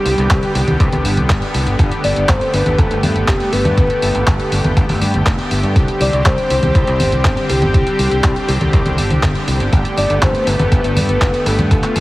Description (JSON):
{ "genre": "italo disco", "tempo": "121 BPM", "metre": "4/4", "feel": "straight", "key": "unclear", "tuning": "A4 = 440 Hz", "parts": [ { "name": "soft octave-layered synth lead", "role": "melody", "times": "0.0-12.0 s", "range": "G4 to D5", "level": "-20 LUFS", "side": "left 1 dB", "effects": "chorus, tremolo" }, { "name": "lush unison pad", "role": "sustained chords", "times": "0.0-12.0 s", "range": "D3 to G4", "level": "-20 LUFS", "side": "equal", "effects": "chorus" }, { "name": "fingered electric bass", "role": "bass", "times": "0.1-12.0 s", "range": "F1 to G2", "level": "-18 LUFS", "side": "equal", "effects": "none" }, { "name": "clean 12-bit digital drum machine", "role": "drums", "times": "0.1-12.0 s", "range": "congas, handclaps, hi-hat", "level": "-20 LUFS", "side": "equal", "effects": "none" }, { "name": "electronic kick drum", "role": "drums", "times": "0.3-11.8 s", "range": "none", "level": "-16 LUFS", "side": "equal", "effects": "overdrive" } ], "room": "light reverb", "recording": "heavily compressed radio sound, vinyl crackle", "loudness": "-12 LUFS", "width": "side -18 dB against mid", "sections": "0.0-12.0 A section", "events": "none", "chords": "0.0 Csus2; 1.8 Gadd9; 5.8 Csus2; 9.7 Gadd9", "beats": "0.30 0.80 1.30 | 1.79 2.29 2.78 3.28 | 3.77 4.27 4.77 5.26 | 5.76 6.25 6.75 7.25 | 7.74 8.24 8.73 9.23 | 9.73 10.22 10.72 11.21 | 11.71" }